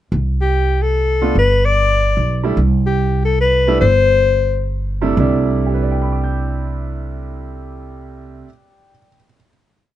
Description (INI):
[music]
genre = jazz, small-group swing and bop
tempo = 125-147 BPM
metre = 3/4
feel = swing 65% on 8ths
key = C major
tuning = A4 = 439 Hz
[part]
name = upright bass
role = bass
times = 0.1-8.4 s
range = G1 to C2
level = -18 LUFS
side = equal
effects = none
[part]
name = clear alto saxophone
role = melody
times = 0.4-4.7 s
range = G4 to D5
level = -16 LUFS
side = left 4 dB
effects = plate reverb
[part]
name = clear baby grand piano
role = accompaniment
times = 1.2-9.5 s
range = C3 to G6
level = -20 LUFS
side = right 4 dB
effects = none
[sound]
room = light reverb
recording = nothing above 10.5 kHz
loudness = -14 LUFS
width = side -12 dB against mid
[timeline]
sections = 0.1-5.2 A section; 5.2-8.0 final chord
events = slowing down 2.6-5.2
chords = 0.1 C5; 1.4 G; 2.6 C5; 5.2 C6